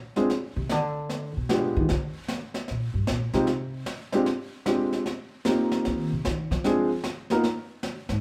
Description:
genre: jazz piano trio.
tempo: 152 BPM.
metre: 4/4.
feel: swing 66% on 8ths.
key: unclear.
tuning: A4 = 441 Hz.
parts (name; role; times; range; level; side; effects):
warm upright piano; melody; 0.2-7.4 s; Ab3 to Bb4; -27 LUFS; equal; none.
snare drum and brushed snare drum; drums; 0.2-8.2 s; none; -35 LUFS; equal; none.
upright bass; bass; 0.6-8.2 s; G2 to F3; -31 LUFS; equal; none.
room: light reverb.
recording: band playing live in one room.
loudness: -27 LUFS.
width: mono.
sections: 0.0-8.2 A section.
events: upright bass solo 0.0-8.2.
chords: 0.3 Csus2; 1.1 G7b9; 1.9 C7sus2 (rootless); 3.5 N.C.; 4.3 Abmaj7#11; 5.1 Eb6; 6.6 Dm7b5; 7.4 N.C..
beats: | 0.30 0.70 1.09 1.49 | 1.89 2.28 2.68 3.08 | 3.47 3.87 4.26 4.66 | 5.05 5.45 5.85 6.24 | 6.64 7.04 7.43 7.83.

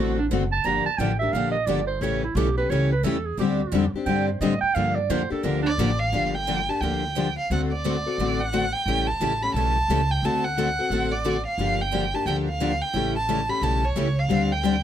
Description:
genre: acoustic string swing (jazz manouche).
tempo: 176 BPM.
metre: 4/4.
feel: swing 61% on 8ths.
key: G minor.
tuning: A4 = 440 Hz.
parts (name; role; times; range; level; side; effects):
warm clarinet; second line; 0.0-5.7 s; D4 to Bb5; -26 LUFS; right 6 dB; none.
picked steel-string acoustic guitar; accompaniment; 0.0-14.7 s; C#3 to A4; -26 LUFS; left 5 dB; none.
picked steel-string acoustic guitar; accompaniment; 0.0-14.8 s; D3 to A4; -32 LUFS; right 6 dB; none.
upright bass; bass; 0.0-14.8 s; F#1 to A2; -27 LUFS; equal; none.
warm violin; melody; 5.7-14.8 s; C#5 to B5; -26 LUFS; right 2 dB; none.
room: moderate club reverb, RT60 0.6 s.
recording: close, detailed microphones.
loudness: -21 LUFS.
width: side -10 dB against mid.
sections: 0.0-6.1 A section; 6.1-14.8 B section.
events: clarinet solo 0.0-6.1.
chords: 0.0 D7; 0.7 Gm7; 2.0 A7; 3.4 D7sus4; 4.8 Gm9; 6.1 Gm7; 7.5 D7; 8.9 A7; 10.2 D7; 11.6 Gm7; 12.9 A7; 14.3 D7sus4.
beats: 0.31 | 0.65 0.99 1.34 1.68 | 2.02 2.36 2.70 3.05 | 3.39 3.73 4.07 4.42 | 4.76 5.10 5.44 5.78 | 6.12 6.47 6.81 7.15 | 7.49 7.83 8.18 8.52 | 8.86 9.20 9.54 9.88 | 10.22 10.56 10.90 11.24 | 11.58 11.92 12.26 12.60 | 12.94 13.28 13.62 13.96 | 14.30 14.64.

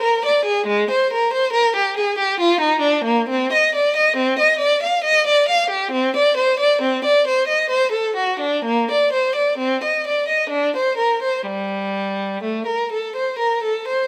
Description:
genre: classical, baroque-style suite movement for unaccompanied violin.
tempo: 60-70 BPM.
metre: 3/4.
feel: rubato.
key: G minor from 3.3 s.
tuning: A4 = 440 Hz.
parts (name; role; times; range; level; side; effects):
rich violin; solo; 0.0-14.1 s; G3 to F5; -19 LUFS; equal; none.
room: moderate stone room reverb, RT60 1.2 s.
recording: none.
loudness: -19 LUFS.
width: mono.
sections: 0.0-14.1 A section.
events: none.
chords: none.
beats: | 0.67 1.53 2.39 | 3.29 4.19 5.06 | 5.93 6.82 7.71 | 8.65 9.60 10.52 | 11.48 12.45 13.41.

